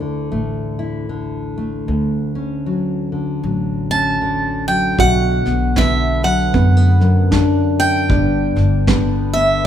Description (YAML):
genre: acoustic folk duo or small band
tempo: 77 BPM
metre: 4/4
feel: swing 60% on 8ths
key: unclear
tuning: A4 = 438 Hz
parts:
  - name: nylon-string guitar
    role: accompaniment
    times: 0.0-9.7 s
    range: D2 to E4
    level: -20 LUFS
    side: left 3 dB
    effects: none
  - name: upright bass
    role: bass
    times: 0.3-9.6 s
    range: G1 to F#2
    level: -18 LUFS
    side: equal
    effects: none
  - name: picked swing-style acoustic guitar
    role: melody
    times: 3.9-9.7 s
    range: E5 to A5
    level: -18 LUFS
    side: right 1 dB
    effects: none
  - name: dark upright piano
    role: arpeggios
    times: 5.0-9.6 s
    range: B3 to F#4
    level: -22 LUFS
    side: right 6 dB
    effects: none
  - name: soft brush drum kit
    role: drums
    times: 5.0-9.4 s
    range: kick drum, snare drum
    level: -20 LUFS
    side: right 1 dB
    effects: none
room: light reverb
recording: band playing live in one room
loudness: -15 LUFS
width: side -10 dB against mid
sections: 0.0-5.0 A section; 5.0-9.7 B section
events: none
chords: 0.0 Dsus2; 1.9 Dmaj7; 5.0 Bm; 8.1 G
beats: 0.32 1.10 | 1.88 2.66 3.44 4.21 | 4.99 5.77 6.55 7.32 | 8.10 8.88 9.65